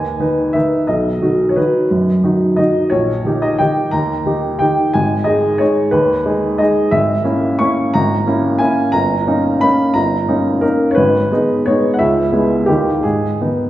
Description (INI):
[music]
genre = classical, piano waltz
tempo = 156-192 BPM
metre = 3/4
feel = rubato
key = G# minor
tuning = A4 = 440 Hz
[part]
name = clear upright piano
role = solo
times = 0.0-13.7 s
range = G1 to C#6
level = -13 LUFS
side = equal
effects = none
[sound]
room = wet recital hall reverb, RT60 1.9 s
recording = heard from further back in the room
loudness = -13 LUFS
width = side -14 dB against mid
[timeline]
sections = 0.0-13.7 A section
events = none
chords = 0.0 G#m; 0.9 B; 2.9 D#7/A#; 4.9 G#m; 6.9 A#m7b5/G#; 8.9 D#7/G; 11.0 G#m; 12.0 C#m7; 12.7 D#; 13.0 G#m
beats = 0.20 0.55 | 0.89 1.23 1.57 | 1.91 2.24 2.58 | 2.92 3.25 3.60 | 3.93 4.26 4.61 | 4.94 5.26 5.61 | 5.94 6.26 6.60 | 6.93 7.26 7.60 | 7.93 8.26 8.60 | 8.93 9.26 9.61 | 9.95 10.28 10.63 | 10.96 11.30 11.65 | 11.99 12.32 12.68 | 13.04 13.41